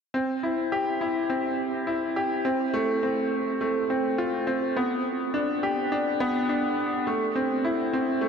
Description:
electronica; 104 BPM; 4/4; straight; C major; A4 = 441 Hz
bright concert grand piano; riff; 0.1-8.3 s; A3 to G4; -24 LUFS; equal; analog delay
wet huge ambient reverb, RT60 8.5 s; dreamy mix soaked in reverb; -24 LUFS; side -6 dB against mid
0.1-8.3 A section
| 0.14 0.72 1.30 1.88 | 2.45 3.03 3.60 4.18 | 4.76 5.34 5.91 6.49 | 7.07 7.64 8.22

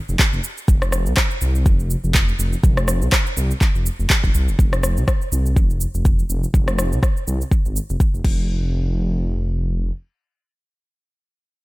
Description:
afro house; 123 BPM; 4/4; swing 56% on 16ths; F minor; A4 = 440 Hz
dark detuned saw bass; bass; 0.1-9.9 s; F1 to C2; -20 LUFS; equal; tube saturation, sidechain pumping
deep house drum kit; drums; 0.1-8.4 s; crash cymbal, handclaps, rim click, shaker; -23 LUFS; equal
electronic kick drum; drums; 0.2-8.4 s; -17 LUFS; equal
digital ambience; -17 LUFS; side -20 dB against mid
0.0-4.6 A section; 4.6-8.5 B section; 8.5-11.6 C section
0.20 | 0.69 1.17 1.66 2.15 | 2.64 3.12 3.61 4.10 | 4.59 5.08 5.56 6.05 | 6.54 7.03 7.51 8.00 | 8.49 8.98 9.47

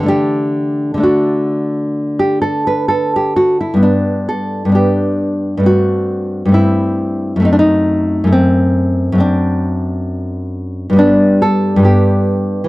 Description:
classical, baroque-style dance for nylon-string guitar; 67 BPM; 4/4; rubato; G major; A4 = 440 Hz
nylon-string guitar; solo; 0.0-12.7 s; F#2 to B4; -12 LUFS; equal
light reverb; dry, close 1970s-style studio recording; -12 LUFS; side -19 dB against mid
0.0-12.7 A section
0.1 D; 3.8 G; 5.7 Am7/G; 7.4 F#dim7; 11.0 G
| 0.11 1.04 1.96 2.89 | 3.82 4.74 5.65 6.55 | 7.44 8.34 9.21 10.09 | 10.99 11.87

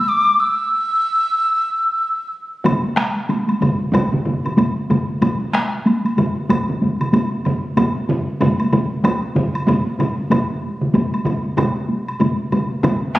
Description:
japanese traditional, taiko drum ensemble; 94 BPM; 4/4; swing 60% on 16ths; A4 = 442 Hz
mellow hollow wooden piccolo; melody; 0.0-2.3 s; D6 to E6; -16 LUFS; equal
taiko ensemble; percussion; 2.6-13.2 s; -20 LUFS; equal
taiko ensemble; percussion; 2.6-13.0 s; -24 LUFS; equal
taiko ensemble; percussion; 2.7-13.2 s; -26 LUFS; left 1 dB
taiko ensemble; percussion; 2.7-13.2 s; -22 LUFS; right 1 dB
woodblock; percussion; 2.7-13.0 s; -28 LUFS; equal
wet recital hall reverb, RT60 1.3 s; recorded on a phone in the room, club reverb; -16 LUFS; side -16 dB against mid
0.0-2.7 A section; 2.7-13.2 B section
break 0.1-2.7
| 0.08 0.72 1.37 2.01 | 2.65 3.30 3.94 4.58 | 5.22 5.86 6.50 7.13 | 7.77 8.41 9.04 9.68 | 10.31 10.94 11.57 12.21 | 12.84

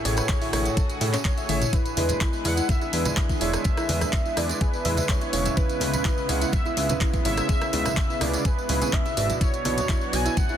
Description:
progressive house; 125 BPM; 4/4; straight; E mixolydian; A4 = 442 Hz
warm velvety synth lead; melody; 0.0-10.6 s; B4 to G#5; -30 LUFS; equal; chorus, sidechain pumping, ping-pong delay
lush unison pad; sustained chords; 0.0-10.6 s; B2 to G#4; -34 LUFS; equal; chorus, sidechain pumping
warm grand piano; stabs; 0.0-10.3 s; A2 to E5; -30 LUFS; right 3 dB; vintage 12-bit sampler grit, sidechain pumping, ping-pong delay
fat analog bass; bass; 0.1-10.3 s; E1 to A2; -27 LUFS; equal; sidechain pumping
pop drum kit; drums; 0.1-10.5 s; handclaps, hi-hat, rim click, toms; -30 LUFS; left 1 dB; overdrive
soft round pluck; arpeggios; 0.2-10.5 s; E3 to E6; -33 LUFS; right 1 dB; chorus, sidechain pumping, ping-pong delay
tambourine; percussion; 0.2-10.6 s; -36 LUFS; right 5 dB
electronic kick drum; drums; 0.3-10.5 s; -24 LUFS; equal; overdrive
congas and bongos; percussion; 2.0-10.6 s; -36 LUFS; right 2 dB
light reverb; dense, heavily limited modern master; -21 LUFS; side -10 dB against mid
0.0-10.6 A section
drum fill 1.5
0.0 Amaj7; 1.7 E7; 5.6 C#m7; 9.4 Bmadd9
0.29 0.77 1.25 | 1.73 2.21 2.69 3.17 | 3.65 4.13 4.61 5.09 | 5.57 6.05 6.53 7.01 | 7.49 7.97 8.45 8.93 | 9.41 9.89 10.37

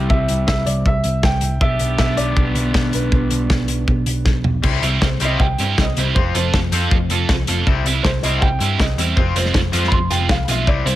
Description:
indie rock; 159 BPM; 4/4; straight; C major; A4 = 440 Hz
dark upright piano; melody; 0.0-11.0 s; B4 to C6; -25 LUFS; right 1 dB; tape echo
biting overdriven guitar; riff; 0.0-11.0 s; F3 to A4; -23 LUFS; right 5 dB; wide subtle chorus
crunchy overdriven guitar; riff; 0.0-11.0 s; F3 to G4; -26 LUFS; left 7 dB
hollow-body short-scale picked electric bass; bass; 0.0-11.0 s; F1 to G2; -20 LUFS; equal
loose indie drum kit; drums; 0.1-11.0 s; crash cymbal, hi-hat, kick drum, snare drum, toms; -19 LUFS; equal
studio reverb; -15 LUFS; side -14 dB against mid
0.0-4.6 A section; 4.6-11.0 B section
drum fill 4.3-4.6; upright piano solo 4.6-11.0
0.0 C; 1.6 G/B; 4.6 C; 6.1 F; 7.7 C; 9.2 Fm
| 0.11 0.48 0.86 1.24 | 1.62 1.99 2.37 2.75 | 3.12 3.50 3.88 4.26 | 4.63 5.01 5.39 5.77 | 6.15 6.53 6.90 7.28 | 7.66 8.04 8.41 8.79 | 9.17 9.55 9.92 10.30 | 10.68

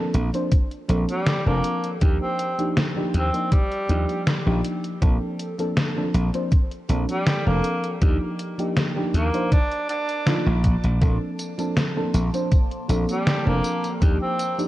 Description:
vaporwave; 80 BPM; 4/4; straight; Bb major; A4 = 442 Hz
mellow FM electric piano; accompaniment; 0.0-14.7 s; F3 to C5; -26 LUFS; equal; analog chorus, analog delay
slap bass; bass; 0.1-14.2 s; F1 to Eb2; -21 LUFS; equal; tube saturation
detuned 8-bit digital drum machine; drums; 0.1-14.7 s; hi-hat, snare drum, tambourine; -25 LUFS; equal; gated reverb
electronic kick drum; drums; 0.5-14.2 s; -18 LUFS; equal
clear tenor saxophone; melody; 1.1-14.7 s; G3 to D4; -27 LUFS; equal; tape echo
warbly tape-like pad; sustained chords; 11.6-14.7 s; Bb3 to Eb6; -35 LUFS; right 2 dB; chorus, built-in reverb
light reverb; cassette tape; -20 LUFS; side -15 dB against mid
0.0-14.7 A section
0.0 Bbmaj9; 2.0 Ebmaj9; 5.0 Bbmaj9; 8.0 Ebmaj9; 11.0 Bbmaj9; 14.0 Ebmaj9
0.52 1.27 | 2.02 2.77 3.52 4.27 | 5.02 5.77 6.52 7.27 | 8.02 8.77 9.52 10.27 | 11.02 11.77 12.52 13.27 | 14.02

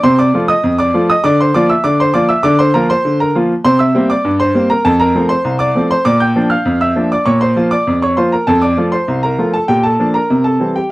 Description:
ragtime piano; 99 BPM; 2/4; straight; F major; A4 = 439 Hz
bright baby grand piano; solo; 0.0-10.9 s; C2 to G6; -11 LUFS; equal
light reverb; dry, close 1970s-style studio recording, vinyl crackle; -11 LUFS; side -19 dB against mid
0.0-10.9 A section
0.0 F7/C; 1.2 Bb/D; 3.6 C7; 4.9 F; 6.1 Bb; 7.3 Bbm; 8.5 F; 9.7 Bb; 10.3 C7
| 0.03 0.63 | 1.23 1.84 | 2.44 3.04 | 3.65 4.25 | 4.85 5.46 | 6.06 6.66 | 7.26 7.87 | 8.47 9.08 | 9.68 10.29 | 10.90

